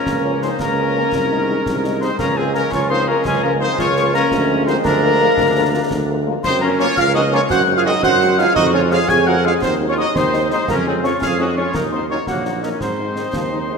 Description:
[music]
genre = military-style march for wind band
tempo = 113 BPM (dotted quarters)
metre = 6/8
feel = straight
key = Db major from 6.4 s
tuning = A4 = 440 Hz
[part]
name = warm trumpet section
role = melody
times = 0.0-13.8 s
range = Gb4 to Ab5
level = -23 LUFS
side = right 2 dB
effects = none
[part]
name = mellow piccolo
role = second line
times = 0.0-13.8 s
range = Gb5 to Ab6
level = -22 LUFS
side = left 4 dB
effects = none
[part]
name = warm euphonium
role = second line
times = 0.0-13.8 s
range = Gb3 to Ab4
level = -22 LUFS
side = right 2 dB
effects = none
[part]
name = warm woodwind section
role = second line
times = 0.0-13.8 s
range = Bb3 to Db5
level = -24 LUFS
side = left 2 dB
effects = none
[part]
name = clear trombone section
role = sustained chords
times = 0.0-13.8 s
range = Eb3 to Eb4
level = -27 LUFS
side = right 3 dB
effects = none
[part]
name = warm tuba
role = bass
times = 0.1-13.8 s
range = Bb1 to Ab2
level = -21 LUFS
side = right 2 dB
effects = none
[part]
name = concert snare drum, concert bass drum and clash cymbals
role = drums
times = 0.1-13.5 s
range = none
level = -29 LUFS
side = left 1 dB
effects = none
[part]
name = mellow French horn section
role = accompaniment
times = 0.2-13.8 s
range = Eb3 to Eb4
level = -26 LUFS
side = left 5 dB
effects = none
[sound]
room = wet concert hall reverb, RT60 2.0 s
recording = minimal, uncompressed stereo recording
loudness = -14 LUFS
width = side -5 dB against mid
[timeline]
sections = 0.0-13.8 A section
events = none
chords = 0.1 Bbm/Db; 1.1 Ab/C; 2.2 Bbm7/Db; 4.3 Bb7/D; 6.4 Gbmaj7; 7.5 Ab7/Gb; 8.6 Db/F; 9.6 Ab7/Eb; 10.7 Db/F; 11.7 Ebm; 12.8 Ab

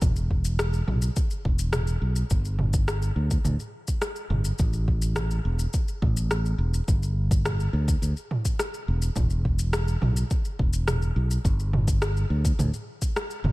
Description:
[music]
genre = sunset chillout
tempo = 105 BPM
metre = 4/4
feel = straight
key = G major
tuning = A4 = 441 Hz
[part]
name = modern bright fingered electric bass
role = bass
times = 0.0-13.5 s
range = E1 to D2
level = -24 LUFS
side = equal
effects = none
[part]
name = deep house drum kit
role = drums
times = 0.0-13.5 s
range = rim click, shaker, toms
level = -30 LUFS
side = equal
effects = overdrive, small room ambience
[part]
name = electronic kick drum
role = drums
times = 0.0-13.1 s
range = none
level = -25 LUFS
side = equal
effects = overdrive, small room ambience
[sound]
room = digital ambience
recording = none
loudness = -23 LUFS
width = side -20 dB against mid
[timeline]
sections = 0.0-13.5 A section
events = none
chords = none

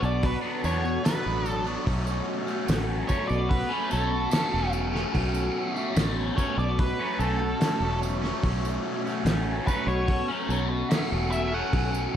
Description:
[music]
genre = psychedelic rock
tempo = 73 BPM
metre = 4/4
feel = straight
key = unclear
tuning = A4 = 440 Hz
[part]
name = octave-fuzz lead guitar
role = melody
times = 0.0-11.9 s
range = A4 to F#5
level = -31 LUFS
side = right 1 dB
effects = distortion, slapback echo
[part]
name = string machine, violas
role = sustained chords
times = 0.0-12.2 s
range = A3 to A4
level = -36 LUFS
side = right 3 dB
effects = ensemble chorus
[part]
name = cranked stack guitar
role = riff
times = 0.0-12.2 s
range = B2 to D4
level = -28 LUFS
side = left 1 dB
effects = overdrive, phaser
[part]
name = fingered electric bass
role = bass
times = 0.0-12.1 s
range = E1 to E2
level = -29 LUFS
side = equal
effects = none
[part]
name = tambourine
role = percussion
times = 0.0-12.1 s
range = none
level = -45 LUFS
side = right 15 dB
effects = none
[part]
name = cloth-damped thuddy drum kit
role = drums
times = 0.2-11.9 s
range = hi-hat, kick drum, snare drum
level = -27 LUFS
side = equal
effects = none
[sound]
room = light reverb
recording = none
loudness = -24 LUFS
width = side -9 dB against mid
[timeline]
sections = 0.0-12.2 A section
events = none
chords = 0.0 Bm7; 1.9 F#m

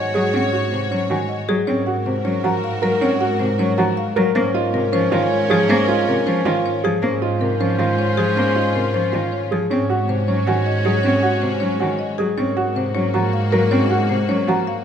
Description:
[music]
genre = classical, minimalist pattern music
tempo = 314 BPM (eighths)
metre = 7/8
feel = straight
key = unclear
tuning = A4 = 440 Hz
[part]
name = marimba with medium mallets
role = melody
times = 0.0-14.8 s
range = Ab4 to Bb5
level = -23 LUFS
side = left 10 dB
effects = none
[part]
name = mellow clarinet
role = second line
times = 0.0-14.8 s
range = Bb4 to Db5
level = -27 LUFS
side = right 2 dB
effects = none
[part]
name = clear symphonic string section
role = sustained chords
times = 0.0-14.8 s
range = Bb3 to Db5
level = -28 LUFS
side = left 2 dB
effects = none
[part]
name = rich symphonic double bass section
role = bass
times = 0.0-14.8 s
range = Ab2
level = -24 LUFS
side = right 1 dB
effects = none
[part]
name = rich cello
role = accompaniment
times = 0.1-14.6 s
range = C3 to C4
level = -24 LUFS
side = equal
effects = none
[part]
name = dark grand piano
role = arpeggios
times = 0.1-14.7 s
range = Db4 to Bb4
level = -23 LUFS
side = right 6 dB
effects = none
[sound]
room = moderate scoring stage reverb, RT60 1.7 s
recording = none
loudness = -16 LUFS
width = side -8 dB against mid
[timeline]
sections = 0.0-14.8 A section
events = none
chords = 0.0 Ab7sus4; 1.7 Gb/Ab; 4.4 Bbm9/Ab; 9.7 Ab7sus4; 12.4 Gb/Ab

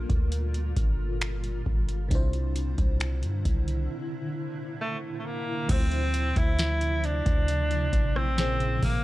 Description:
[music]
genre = contemporary R&B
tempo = 67 BPM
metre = 4/4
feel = straight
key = D minor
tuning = A4 = 443 Hz
[part]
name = FM electric piano with soft pad layer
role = accompaniment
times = 0.0-9.0 s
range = Bb2 to C5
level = -36 LUFS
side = equal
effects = chorus, phaser
[part]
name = granular cloud pad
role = sustained chords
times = 0.0-9.0 s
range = Bb2 to F4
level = -36 LUFS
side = equal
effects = built-in reverb
[part]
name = warm 808-style bass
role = bass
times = 0.0-9.0 s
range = G1 to G2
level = -28 LUFS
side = equal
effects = none
[part]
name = booming analog drum machine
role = drums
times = 0.1-9.0 s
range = crash cymbal, finger snaps, hi-hat, kick drum, rim click, snare drum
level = -27 LUFS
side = equal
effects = none
[part]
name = breathy alto saxophone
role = melody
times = 4.8-9.0 s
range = A3 to E4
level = -29 LUFS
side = right 1 dB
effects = none
[sound]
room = digital ambience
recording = dry, gritty hardware recording, cassette tape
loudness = -25 LUFS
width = side -17 dB against mid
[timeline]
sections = 0.0-5.7 A section; 5.7-9.0 B section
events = break 3.9-5.7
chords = 0.0 Gm9; 2.1 C9; 5.7 Dm9; 8.4 Bbm7

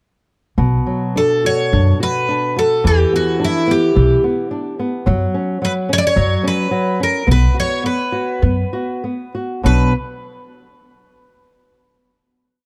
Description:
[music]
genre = fado-style ballad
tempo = 96-110 BPM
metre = 4/4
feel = rubato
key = B minor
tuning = A4 = 442 Hz
[part]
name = flamenco guitar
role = accompaniment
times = 0.6-9.9 s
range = B2 to F#4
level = -22 LUFS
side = equal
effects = none
[part]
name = upright bass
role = bass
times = 0.6-9.9 s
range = B1 to F#2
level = -17 LUFS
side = equal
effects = none
[part]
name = picked twelve-string acoustic guitar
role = melody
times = 1.2-9.9 s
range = E4 to D5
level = -20 LUFS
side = equal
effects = none
[sound]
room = light reverb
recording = dark, warm production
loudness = -17 LUFS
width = mono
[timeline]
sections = 0.6-9.6 A section; 9.6-11.9 final chord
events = none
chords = 0.6 Bm; 2.8 Em7; 5.1 F#5; 7.3 B5; 9.6 Bm

